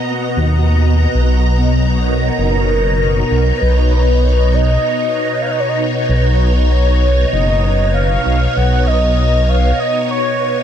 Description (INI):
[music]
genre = IDM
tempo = 97 BPM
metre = 4/4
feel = straight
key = B major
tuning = A4 = 440 Hz
[part]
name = warm velvety synth lead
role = melody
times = 0.0-10.6 s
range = A#4 to F#5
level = -20 LUFS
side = equal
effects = chorus, tape echo
[part]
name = soft string machine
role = sustained chords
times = 0.0-10.6 s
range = B2 to A#5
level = -17 LUFS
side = equal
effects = phaser, ensemble chorus
[part]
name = flickering grainy texture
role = texture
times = 0.0-1.1 s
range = B3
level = -28 LUFS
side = equal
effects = built-in reverb
[part]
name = dark detuned saw bass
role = bass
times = 0.4-9.7 s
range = F#1 to D#2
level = -13 LUFS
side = equal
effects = none
[sound]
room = little or no reverb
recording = none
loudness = -12 LUFS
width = side -9 dB against mid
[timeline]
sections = 0.0-1.1 A section; 1.1-10.6 B section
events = none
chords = 0.0 G#m9/B (rootless); 1.1 Bmaj9